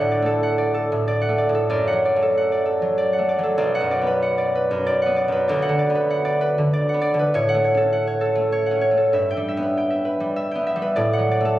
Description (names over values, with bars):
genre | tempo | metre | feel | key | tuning
classical, solo harp piece | 97 BPM | 3/4 | uneven beats, rubato | D major | A4 = 442 Hz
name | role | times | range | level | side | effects
concert harp | solo | 0.0-11.6 s | B1 to G5 | -18 LUFS | equal | none
room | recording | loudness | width
moderate recital hall reverb, RT60 1.7 s | recorded on a phone in the room, studio reverb | -18 LUFS | side -14 dB against mid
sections
0.0-11.6 A section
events
none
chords
0.0 D; 1.7 D/F#; 3.6 Bm; 5.5 Bm/D; 7.3 F#m/A; 9.1 Em/G; 11.0 D/A